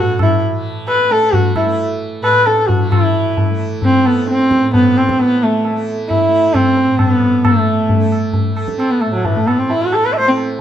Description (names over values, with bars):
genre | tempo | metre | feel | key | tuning
indian classical, Hindustani | 133 BPM | 5/4 | straight | A raga shivaranjani | A4 = 439 Hz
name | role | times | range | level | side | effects
warm sarangi | melody | 0.0-10.4 s | E3 to E5 | -14 LUFS | equal | none
tanpura | drone | 0.0-10.6 s | A2 to A3 | -24 LUFS | right 2 dB | none
tabla | percussion | 0.2-10.5 s | none | -18 LUFS | left 2 dB | none
room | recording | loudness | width
moderate small room reverb, RT60 0.5 s | minimal, uncompressed stereo recording | -12 LUFS | side -10 dB against mid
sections
0.0-2.9 A section; 2.9-10.6 B section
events
none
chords
none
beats
0.20 | 0.66 1.11 1.57 2.02 2.47 | 2.93 3.38 3.83 4.29 4.74 | 5.19 5.64 6.09 6.54 6.99 | 7.44 7.89 8.34 8.79 9.24 | 9.69 10.14 10.59